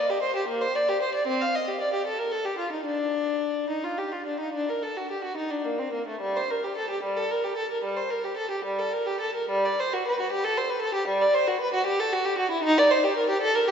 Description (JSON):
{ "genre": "classical, baroque-style suite movement for unaccompanied violin", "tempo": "69-78 BPM (dotted quarters)", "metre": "12/8", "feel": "rubato", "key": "G minor", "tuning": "A4 = 440 Hz", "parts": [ { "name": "warm violin", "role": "solo", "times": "0.0-13.7 s", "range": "G3 to F5", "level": "-24 LUFS", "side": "equal", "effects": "none" } ], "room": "wet church reverb, RT60 2.9 s", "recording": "recorded in a church or concert hall, nothing above 7.8 kHz", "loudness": "-24 LUFS", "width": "side -7 dB against mid", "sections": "0.0-13.7 A section", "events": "none", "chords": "none" }